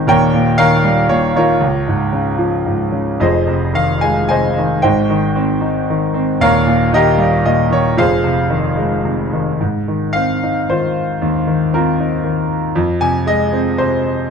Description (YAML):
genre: classical, lyrical solo piano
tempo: 114 BPM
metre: 3/4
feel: uneven beats, rubato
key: F minor, Ab major from 9.6 s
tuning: A4 = 440 Hz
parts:
  - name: bright concert grand piano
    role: solo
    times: 0.0-14.3 s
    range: Eb1 to Ab5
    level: -13 LUFS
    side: equal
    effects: none
room: light reverb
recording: dark, warm production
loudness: -13 LUFS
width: side -6 dB against mid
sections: 0.0-9.6 A section; 9.6-14.3 B section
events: none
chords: 0.1 Eb7; 1.6 Db6; 3.2 Fm7; 4.8 Abmaj7; 6.4 Eb7; 8.0 Fm7; 9.6 Ab6; 12.8 Fm7